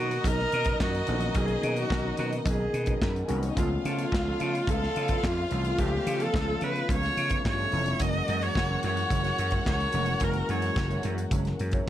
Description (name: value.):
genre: disco.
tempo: 108 BPM.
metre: 4/4.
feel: straight.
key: B major.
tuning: A4 = 441 Hz.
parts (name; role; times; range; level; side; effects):
clear viola; melody; 0.0-11.1 s; E#4 to D#5; -30 LUFS; equal; none.
warm symphonic violin section; second line; 0.0-11.8 s; G3 to F#5; -36 LUFS; left 2 dB; none.
bell-like tine electric piano; accompaniment; 0.0-11.9 s; D#3 to F#4; -36 LUFS; left 4 dB; none.
mellow electric guitar; accompaniment; 0.0-11.8 s; E#3 to C#5; -38 LUFS; right 7 dB; lush chorus.
mellow French horn section; sustained chords; 0.0-11.9 s; B2 to A#4; -38 LUFS; left 1 dB; none.
vintage slap bass; bass; 0.0-11.8 s; E#1 to C#3; -30 LUFS; equal; none.
modern studio drum kit; drums; 0.1-11.9 s; handclaps, hi-hat, kick drum, snare drum; -31 LUFS; equal; none.
room: light reverb, small room reverb.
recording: none.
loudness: -25 LUFS.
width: side -12 dB against mid.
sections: 0.0-11.9 A section.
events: none.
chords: 0.0 Bmaj9; 3.6 C#7alt; 8.0 F#9.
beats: 0.25 0.80 | 1.35 1.91 2.46 3.01 | 3.57 4.12 4.67 5.23 | 5.78 6.33 6.89 7.44 | 8.00 8.55 9.10 9.66 | 10.21 10.77 11.32 11.87.